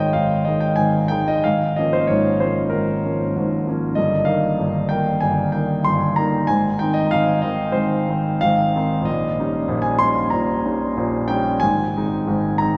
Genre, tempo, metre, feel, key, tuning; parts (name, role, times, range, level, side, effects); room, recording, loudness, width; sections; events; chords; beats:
classical, romantic character piece for solo piano; 94 BPM; 4/4; rubato; Ab major; A4 = 439 Hz
warm grand piano; solo; 0.0-12.8 s; G1 to C6; -20 LUFS; equal
wet cathedral reverb, RT60 5.0 s; recorded in a church or concert hall; -20 LUFS; mono
0.0-12.8 A section
0.0 Ab5; 1.4 Bbm7/Ab; 4.0 Eb/G; 6.5 Ab; 9.1 Eb7/Bb; 11.6 Ab
0.15 0.79 | 1.44 2.07 2.71 3.35 | 3.97 4.58 5.20 5.83 | 6.46 7.09 7.73 8.42 | 9.06 9.69 10.32 10.97 | 11.62 12.28